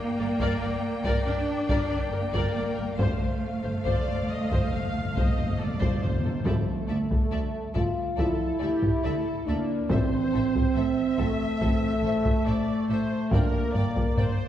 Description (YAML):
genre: cinematic, epic orchestral film score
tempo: 70 BPM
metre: 4/4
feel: straight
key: D minor from 6.5 s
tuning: A4 = 440 Hz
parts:
  - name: warm symphonic violin section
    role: melody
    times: 0.0-14.3 s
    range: E5 to G5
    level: -43 LUFS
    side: left 4 dB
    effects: none
  - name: mellow French horn section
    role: sustained chords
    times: 0.0-14.4 s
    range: A3 to F5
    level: -29 LUFS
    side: equal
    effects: none
  - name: warm symphonic cello section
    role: bass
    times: 0.0-14.3 s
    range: D2 to D4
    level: -33 LUFS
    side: right 1 dB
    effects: none
  - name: rich symphonic violin section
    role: second line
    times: 0.2-14.3 s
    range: A4 to D5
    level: -38 LUFS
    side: left 3 dB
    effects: none
  - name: rich symphonic viola section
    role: accompaniment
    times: 0.2-14.5 s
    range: Bb3 to F5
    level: -36 LUFS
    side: right 1 dB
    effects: none
  - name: rich studio double bass section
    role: bass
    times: 0.2-14.3 s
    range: G1 to D2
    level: -33 LUFS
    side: right 1 dB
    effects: none
  - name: taiko ensemble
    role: drums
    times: 0.4-14.5 s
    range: none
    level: -28 LUFS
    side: equal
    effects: none
  - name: timpani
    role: percussion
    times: 3.0-11.2 s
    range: G2 to A2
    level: -33 LUFS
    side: left 1 dB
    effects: none
  - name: warm trombone section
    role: sustained chords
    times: 6.5-13.6 s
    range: D3 to E4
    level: -38 LUFS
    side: right 2 dB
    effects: none
room: wet scoring stage reverb, RT60 1.9 s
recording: heard from further back in the room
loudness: -24 LUFS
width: side -11 dB against mid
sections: 0.0-6.5 A section; 6.5-14.5 B section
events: timpani fill 3.0-6.5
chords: 0.0 Gm; 3.0 F/G; 6.5 Dmadd9; 9.9 Am; 13.3 Gm